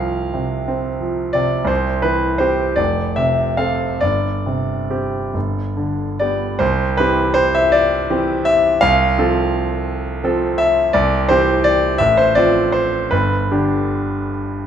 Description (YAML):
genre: classical, romantic character piece for solo piano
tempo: 45-60 BPM (dotted quarters)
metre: 6/8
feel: rubato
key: C major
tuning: A4 = 440 Hz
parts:
  - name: clear concert grand piano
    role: solo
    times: 0.0-14.7 s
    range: F1 to F5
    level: -15 LUFS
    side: equal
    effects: none
room: wet recital hall reverb, RT60 1.4 s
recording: minimal, uncompressed stereo recording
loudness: -15 LUFS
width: side -8 dB against mid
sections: 0.0-6.6 A section; 6.6-14.7 A section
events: none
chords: 0.0 F5/C; 1.7 C; 2.8 F; 4.0 Gsus4; 5.3 G; 6.6 C; 8.8 F/C; 10.9 C; 12.0 F/A; 13.1 G